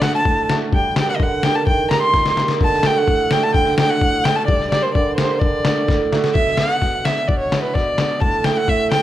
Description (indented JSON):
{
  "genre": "klezmer",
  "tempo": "128 BPM",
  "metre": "2/4",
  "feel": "straight",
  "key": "D phrygian dominant",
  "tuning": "A4 = 440 Hz",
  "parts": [
    { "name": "dark violin", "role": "melody", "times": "0.0-9.0 s", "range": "B4 to C6", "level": "-19 LUFS", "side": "equal", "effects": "none" },
    { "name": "hammered dulcimer", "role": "accompaniment", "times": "0.0-9.0 s", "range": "A2 to A4", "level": "-21 LUFS", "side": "right 4 dB", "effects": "none" },
    { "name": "trip hop sampler-style drum kit", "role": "drums", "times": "0.0-9.0 s", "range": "kick drum, snare drum", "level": "-20 LUFS", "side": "left 2 dB", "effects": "none" }
  ],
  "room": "light reverb",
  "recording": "close, detailed microphones",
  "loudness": "-15 LUFS",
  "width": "side -13 dB against mid",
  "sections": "0.0-6.4 A section; 6.4-9.0 B section",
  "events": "drum fill 2.1-2.6, 5.9-6.4",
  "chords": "0.0 D; 0.7 Gm; 1.7 Eb; 2.6 D; 4.5 Gm; 5.4 D; 6.4 Bm; 8.2 A"
}